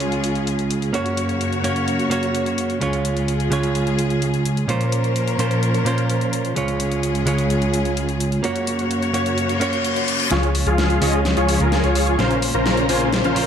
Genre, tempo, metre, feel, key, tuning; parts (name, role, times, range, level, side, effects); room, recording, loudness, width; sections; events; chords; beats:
EDM, festival progressive house; 128 BPM; 4/4; straight; Db major; A4 = 441 Hz
direct-recorded clean electric guitar; accompaniment; 0.0-13.5 s; Bb2 to Db5; -22 LUFS; right 3 dB; ping-pong delay
rich studio string section; sustained chords; 0.0-13.5 s; Db2 to Db5; -23 LUFS; left 2 dB; low-pass filter
big-room dance drum kit; drums; 0.0-13.5 s; hi-hat, snare drum; -27 LUFS; left 2 dB
reverse cymbal and riser; sound effects; 9.5-13.5 s; -28 LUFS; left 4 dB
dense compressed supersaw; riff; 10.3-13.5 s; Db4 to Bb5; -19 LUFS; left 1 dB; low-pass filter, ping-pong delay
fat analog bass; bass; 10.3-13.5 s; Bb1 to Db2; -22 LUFS; left 1 dB
moderate lush hall reverb, RT60 2.3 s; dark, warm production, high-pass filter; -18 LUFS; side -8 dB against mid
0.0-10.3 A section; 10.3-13.5 B section
reverse cymbal 9.5-10.3; build-up 10.3-13.5; drum fill 10.3-13.5
0.0 Db; 0.9 Gb; 2.8 Db; 4.7 Bbmadd9; 6.6 Db; 8.4 Gb; 10.3 Db; 12.2 Bbmadd9
0.00 0.47 | 0.94 1.41 1.88 2.35 | 2.81 3.28 3.75 4.22 | 4.69 5.16 5.63 6.10 | 6.57 7.03 7.50 7.97 | 8.44 8.91 9.38 9.85 | 10.31 10.78 11.25 11.72 | 12.19 12.66 13.13